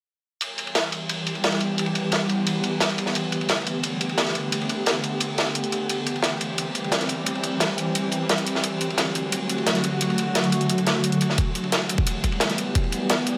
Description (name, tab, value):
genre	dark technical drum and bass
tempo	175 BPM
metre	4/4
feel	straight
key	E minor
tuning	A4 = 440 Hz
part	swarming drone	sustained chords	0.8-13.4 s	D3 to G4	-28 LUFS	equal	built-in reverb, sidechain pumping
part	crunchy breakbeat drum kit	drums	0.4-13.3 s	ride cymbal, snare drum	-28 LUFS	equal	high-pass filter on cymbals, high-pass filter on snare, high-pass filter on room
part	electronic hi-hat	drums	0.4-13.3 s	none	-31 LUFS	equal	low-pass filter on hats, low-pass filter on room
part	electronic kick drum	drums	11.4-12.8 s	none	-25 LUFS	equal	overdrive
room	light reverb, studio reverb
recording	none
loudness	-24 LUFS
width	mono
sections	0.4-13.4 A section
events	none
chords	0.4 Em; 3.2 Gadd9; 5.9 C; 8.6 D; 11.4 Em